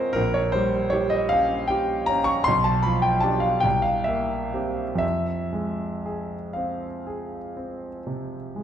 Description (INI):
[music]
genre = classical, romantic nocturne for solo piano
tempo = 38-53 BPM (dotted quarters)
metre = 12/8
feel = rubato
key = F minor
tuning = A4 = 440 Hz
[part]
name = warm concert grand piano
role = solo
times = 0.0-8.6 s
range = Bb1 to Db6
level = -22 LUFS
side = equal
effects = none
[sound]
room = wet recital hall reverb, RT60 1.9 s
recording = dark, warm production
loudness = -22 LUFS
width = side -9 dB against mid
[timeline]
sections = 0.0-8.6 A section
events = none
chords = 0.2 Gdim/Bb; 2.5 G7/B; 3.6 C7; 5.0 Fm